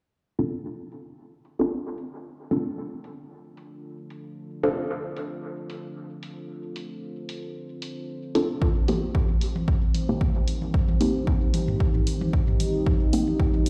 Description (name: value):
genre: dub techno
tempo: 113 BPM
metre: 4/4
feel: swing 54% on 16ths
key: D phrygian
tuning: A4 = 440 Hz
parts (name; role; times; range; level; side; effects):
- deep dark ambient pad; sustained chords; 2.0-13.7 s; D4 to C5; -35 LUFS; equal; chorus, built-in reverb, sidechain pumping
- filtered dub chord stab; stabs; 0.4-4.8, 8.3-13.3 s; Bb3 to A4; -30 LUFS; equal; phaser, sidechain pumping, dub echo
- electronic hi-hat; drums; 0.4-13.7 s; none; -41 LUFS; equal; low-pass filter on hats
- electronic kick drum; drums; 8.6-13.5 s; none; -26 LUFS; equal; none
- electronic toms; percussion; 8.6-13.6 s; none; -34 LUFS; equal; sidechain pumping on toms
room: moderate echo chamber reverb, RT60 2.2 s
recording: played on a big sound system in a bare room, large studio reverb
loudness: -25 LUFS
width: mono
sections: 0.1-13.7 A section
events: filter sweep on drum 0.1-13.7; filter sweep on synth stab 0.1-13.7; filter sweep on ambient pad 0.1-13.7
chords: 0.1 Dm7; 8.6 Cm7